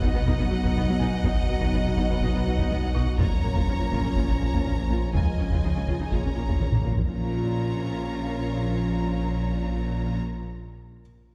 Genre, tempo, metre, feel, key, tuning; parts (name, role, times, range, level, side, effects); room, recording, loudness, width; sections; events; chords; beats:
cinematic, hybrid orchestral and electronic film score; 123 BPM; 4/4; straight; Bb phrygian; A4 = 440 Hz
rich symphonic violin section; melody; 0.0-10.2 s; F#5 to Bb5; -40 LUFS; equal
rich symphonic violin section; second line; 0.0-10.2 s; Db5 to D#5; -41 LUFS; equal
warm symphonic viola section; accompaniment; 0.0-10.2 s; F#3 to F4; -38 LUFS; equal
dark French horn section; sustained chords; 0.0-10.2 s; F3 to D#4; -37 LUFS; equal
glassy FM pad; sustained chords; 0.0-10.2 s; F3 to B4; -35 LUFS; equal; ensemble chorus, built-in reverb
resonant blip pluck; arpeggios; 0.0-6.9 s; Db3 to B4; -38 LUFS; equal
clear symphonic cello section; bass; 0.0-10.2 s; Bb2 to Db3; -37 LUFS; equal
phased detuned saw bass; bass; 0.0-10.2 s; Bb1 to Db2; -32 LUFS; equal; phaser
rich symphonic double bass section; bass; 0.0-10.2 s; Bb1 to Db2; -34 LUFS; equal
taiko ensemble; drums; 0.0-7.2 s; -29 LUFS; equal
dark grand piano; texture; 0.0-5.2 s; Eb5 to Db6; -50 LUFS; equal
wet scoring stage reverb, RT60 1.9 s; heard from further back in the room; -25 LUFS; mono
0.0-7.1 A section; 7.1-11.0 B section
drum fill 6.6-7.1
0.0 B; 3.2 Bbm; 5.1 Dbadd9; 6.1 Bbm
0.26 0.75 | 1.24 1.73 2.21 2.70 | 3.19 3.68 4.17 4.65 | 5.14 5.63 6.12 6.61 | 7.09 7.58 8.07 8.56 | 9.04 9.53 10.02